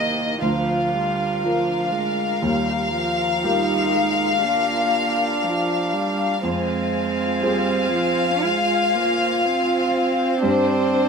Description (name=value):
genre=neoclassical piano and strings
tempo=60 BPM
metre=4/4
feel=rubato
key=unclear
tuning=A4 = 439 Hz
part: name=warm chamber violin section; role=melody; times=0.0-11.1 s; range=C5 to F5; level=-22 LUFS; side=left 4 dB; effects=none
part: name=warm cello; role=second line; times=0.0-11.1 s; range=Bb3 to F4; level=-24 LUFS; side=right 4 dB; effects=none
part: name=felt-muted upright piano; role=accompaniment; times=0.0-11.1 s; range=C2 to C5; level=-27 LUFS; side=equal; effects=none
part: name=warm viola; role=accompaniment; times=0.0-11.1 s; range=Eb3 to C4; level=-26 LUFS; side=right 2 dB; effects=none
part: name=dark chamber string section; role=sustained chords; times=0.0-11.1 s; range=D4 to Ab5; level=-32 LUFS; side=left 2 dB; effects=none
room=light reverb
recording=minimal, uncompressed stereo recording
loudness=-18 LUFS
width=side -5 dB against mid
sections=0.0-11.1 A section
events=none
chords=0.4 Bb/D; 2.4 Ebadd9; 6.4 Fm; 10.4 Gsus4